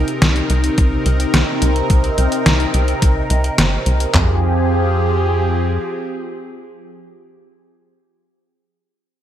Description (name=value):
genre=synthwave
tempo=107 BPM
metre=4/4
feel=straight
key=F minor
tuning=A4 = 440 Hz
part: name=phased analog pad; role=sustained chords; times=0.0-7.1 s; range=C3 to Bb4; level=-20 LUFS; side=equal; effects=phaser, chorus, sidechain pumping
part: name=tight sequencer bass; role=bass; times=0.0-5.8 s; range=G1 to F2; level=-17 LUFS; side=equal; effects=none
part: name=detuned 8-bit digital drum machine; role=drums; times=0.1-4.1 s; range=hi-hat, snare drum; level=-19 LUFS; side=equal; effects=gated reverb
part: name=detuned 8-bit digital drum machine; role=drums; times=0.8-4.3 s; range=handclaps, kick drum, toms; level=-15 LUFS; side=equal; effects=gated reverb
room=moderate lush hall reverb, RT60 2.6 s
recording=bright 1980s-style digital production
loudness=-14 LUFS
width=side -11 dB against mid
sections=0.0-4.1 A section; 4.1-6.4 B section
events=none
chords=0.0 Cm7; 4.1 Fmadd9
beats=0.22 0.78 1.34 | 1.90 2.46 3.02 3.58 | 4.14 4.70 5.26 5.83